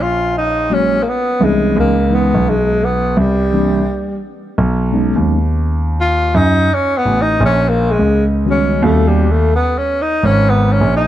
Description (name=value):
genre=hip hop, jazz-hop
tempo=85 BPM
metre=4/4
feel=swing 64% on 16ths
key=unclear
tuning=A4 = 441 Hz
part: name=breathy tenor saxophone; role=melody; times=0.0-11.1 s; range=G3 to E#4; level=-16 LUFS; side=left 1 dB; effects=none
part: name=dark concert grand piano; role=bass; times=0.0-11.1 s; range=G#1 to F#2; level=-14 LUFS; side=equal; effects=none
part: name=mellow tine electric piano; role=accompaniment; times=0.7-9.3 s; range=D#3 to F#4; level=-20 LUFS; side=equal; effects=medium stereo tremolo
room=light reverb, small room ambience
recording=dark, warm production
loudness=-12 LUFS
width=side -12 dB against mid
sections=0.0-11.1 A section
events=tenor saxophone solo 0.0-11.1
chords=0.0 F#69; 1.8 C#m9; 3.2 C9; 4.6 B69; 7.4 Bmaj13/A#; 8.8 D#7alt; 10.2 G#madd9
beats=0.34 1.05 | 1.76 2.46 3.17 3.87 | 4.58 5.29 5.99 6.70 | 7.40 8.11 8.81 9.52 | 10.23 10.93